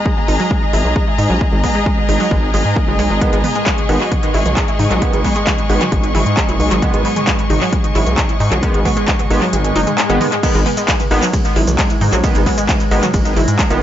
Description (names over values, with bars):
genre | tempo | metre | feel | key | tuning
driving peak-time techno | 133 BPM | 4/4 | straight | G# minor | A4 = 437 Hz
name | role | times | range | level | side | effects
overtone-sweeping drone | drone | 0.0-13.8 s | G#2 to G#3 | -23 LUFS | right 2 dB | chorus, built-in reverb, sidechain pumping
rich studio string section | texture | 0.0-10.5 s | G#4 to C#6 | -21 LUFS | left 1 dB | sidechain pumping
analog pluck | riff | 0.1-13.7 s | F#3 to E4 | -21 LUFS | equal | chorus, sidechain pumping, tape echo
electronic kick drum | drums | 0.1-13.7 s | none | -17 LUFS | equal | overdrive, studio reverb
gritty driven synth bass | bass | 0.3-13.8 s | F#1 to G#2 | -17 LUFS | equal | sidechain pumping
techno drum kit | drums | 0.3-13.8 s | crash cymbal, handclaps, hi-hat, ride cymbal, shaker, toms | -22 LUFS | equal | overdrive, studio reverb, tape echo
sync-sweep polysynth | stabs | 3.2-13.8 s | D#3 to B3 | -22 LUFS | right 2 dB | chorus, sidechain pumping, tape echo
swell | sound effects | 9.7-10.4 s | none | -26 LUFS | right 6 dB | none
room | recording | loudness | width
light reverb | echo-heavy mix, nothing above 7.6 kHz | -13 LUFS | side -11 dB against mid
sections
0.0-10.4 A section; 10.4-13.8 B section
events
kick drops out 9.5-10.4; drop 10.4-13.8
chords
0.0 G#m